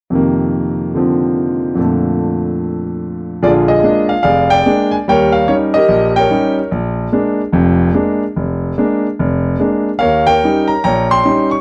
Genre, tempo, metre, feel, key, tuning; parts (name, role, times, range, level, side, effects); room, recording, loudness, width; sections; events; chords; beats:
solo jazz; 146 BPM; 4/4; swing 65% on 8ths, rubato; Bb major; A4 = 441 Hz
clear grand piano; solo; 0.1-11.6 s; F1 to Db6; -14 LUFS; equal
studio reverb; dry, close 1970s-style studio recording; -14 LUFS; mono
0.1-3.4 A section; 3.4-11.6 B section
0.1 F7sus4; 1.8 Bbmaj7/F; 3.4 Bb7; 5.1 Eb7; 6.7 Bb7; 10.0 Eb7
| 0.13 0.55 0.96 1.36 | 1.77 2.18 2.60 3.01 | 3.43 3.85 4.26 4.67 | 5.08 5.48 5.89 6.30 | 6.71 7.11 7.53 7.94 | 8.35 8.76 9.18 9.59 | 10.01 10.42 10.84 11.25